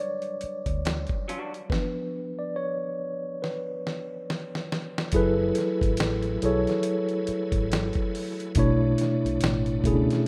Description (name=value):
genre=R&B, neo-soul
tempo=70 BPM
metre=4/4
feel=swing 60% on 16ths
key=F# minor from 5.1 s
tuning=A4 = 442 Hz
part: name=mellow tine electric piano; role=accompaniment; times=0.0-10.3 s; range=B2 to D5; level=-28 LUFS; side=equal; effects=none
part: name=dusty soul sampler-style drum kit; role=drums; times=0.2-10.3 s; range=hi-hat, kick drum, snare drum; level=-32 LUFS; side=equal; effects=none
part: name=vintage muted fingered electric bass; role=bass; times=0.4-10.1 s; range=F#1 to D2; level=-33 LUFS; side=equal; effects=none
part: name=electric guitar through a small old amp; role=second line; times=0.9-1.5 s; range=G3 to F#4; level=-41 LUFS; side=equal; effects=none
part: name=bright tonewheel organ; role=sustained chords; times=5.1-10.3 s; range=F#3 to G#5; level=-46 LUFS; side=equal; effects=slow rotary speaker, overdrive, chorus vibrato
room=light reverb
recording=rough home demo mix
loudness=-27 LUFS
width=mono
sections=0.0-5.1 A section; 5.1-10.3 B section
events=tine electric piano solo 0.0-5.1; drum fill 3.4-5.1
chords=0.0 Em9 (rootless); 1.7 C#7b9; 5.1 F#m11; 8.6 Bm11